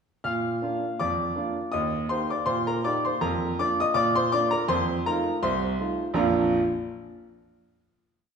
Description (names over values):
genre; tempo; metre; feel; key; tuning
ragtime piano; 81 BPM; 2/4; swing 55% on 16ths; Bb major; A4 = 436 Hz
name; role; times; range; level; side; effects
clear upright piano; solo; 0.2-6.6 s; Bb1 to F6; -23 LUFS; equal; none
room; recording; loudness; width
wet recital hall reverb, RT60 1.4 s; heard from further back in the room; -23 LUFS; side -6 dB against mid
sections
0.3-6.2 A section; 6.2-7.7 final chord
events
none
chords
0.3 Bb; 1.7 Eb; 3.2 Bb/F; 4.7 F7; 6.2 Bb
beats
| 0.25 1.00 | 1.74 2.48 | 3.21 3.95 | 4.69 5.43 | 6.18